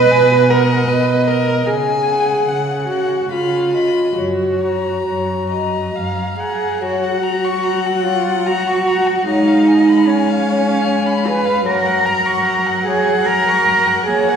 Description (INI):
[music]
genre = classical, slow romantic movement for string quartet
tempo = 66-78 BPM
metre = 3/4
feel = rubato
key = F# major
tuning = A4 = 443 Hz
[part]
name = rich violin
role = melody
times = 0.0-14.4 s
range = D#5 to B5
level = -25 LUFS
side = left 7 dB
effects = none
[part]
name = dark violin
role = second line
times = 0.0-14.4 s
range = C#5 to C#6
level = -22 LUFS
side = left 4 dB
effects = none
[part]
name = warm viola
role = accompaniment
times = 0.0-14.4 s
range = F#3 to B4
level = -18 LUFS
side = right 1 dB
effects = none
[part]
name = warm cello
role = bass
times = 0.1-14.4 s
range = F#2 to B4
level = -17 LUFS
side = right 2 dB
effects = none
[sound]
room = wet concert hall reverb, RT60 1.9 s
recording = heard from further back in the room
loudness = -14 LUFS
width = side -7 dB against mid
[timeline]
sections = 0.0-6.8 A section; 6.8-14.4 B section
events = none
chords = 0.0 B; 1.7 F#5/C#; 3.3 C#7; 4.2 F#; 9.3 C#7/G#; 11.7 F#